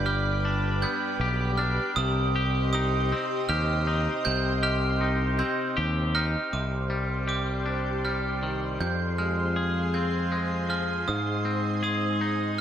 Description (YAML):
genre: post-rock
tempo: 79 BPM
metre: 3/4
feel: straight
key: C harmonic minor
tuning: A4 = 440 Hz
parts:
  - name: soft additive organ-like pad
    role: sustained chords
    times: 0.0-12.6 s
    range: G4 to C6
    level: -33 LUFS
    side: equal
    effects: ensemble chorus, built-in reverb
  - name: glockenspiel with hard plastic mallets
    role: arpeggios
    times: 0.0-12.6 s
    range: D6 to G6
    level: -31 LUFS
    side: right 5 dB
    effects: analog delay
  - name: twangy electric guitar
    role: arpeggios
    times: 0.0-12.6 s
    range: F2 to Ab4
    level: -30 LUFS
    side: left 3 dB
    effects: analog delay, slapback echo
  - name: growling fingered electric bass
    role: bass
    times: 0.0-12.6 s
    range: G1 to Ab2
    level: -28 LUFS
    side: equal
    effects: overdrive
room: moderate scoring stage reverb, RT60 1.8 s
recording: big arena sound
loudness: -24 LUFS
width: side -9 dB against mid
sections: 0.0-6.5 A section; 6.5-12.6 B section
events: none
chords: 0.0 G; 2.0 Cm; 6.5 Cmadd9; 8.8 Fm; 11.1 Ab